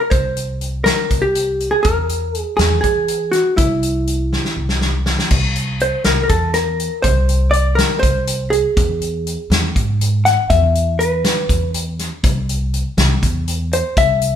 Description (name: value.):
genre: progressive instrumental, band music in an uneven meter.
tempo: 242 BPM (eighths).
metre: 7/8.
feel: straight.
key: C mixolydian.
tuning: A4 = 440 Hz.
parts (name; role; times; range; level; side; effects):
vintage hollow-body jazz guitar; melody; 0.0-14.4 s; E4 to F#5; -18 LUFS; equal; none.
upright bass; bass; 0.1-14.4 s; C2 to E3; -19 LUFS; equal; none.
natural country drum kit; drums; 0.1-14.3 s; crash cymbal, hi-hat, kick drum, snare drum; -19 LUFS; equal; none.
room: light reverb.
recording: band playing live in one room.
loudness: -15 LUFS.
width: side -9 dB against mid.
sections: 0.0-5.3 A section; 5.3-14.4 B section.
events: drum fill 4.3-5.3; hollow-body jazz guitar solo 5.3-14.4.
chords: 0.0 C5; 1.8 E; 3.6 C; 8.8 E; 12.2 C.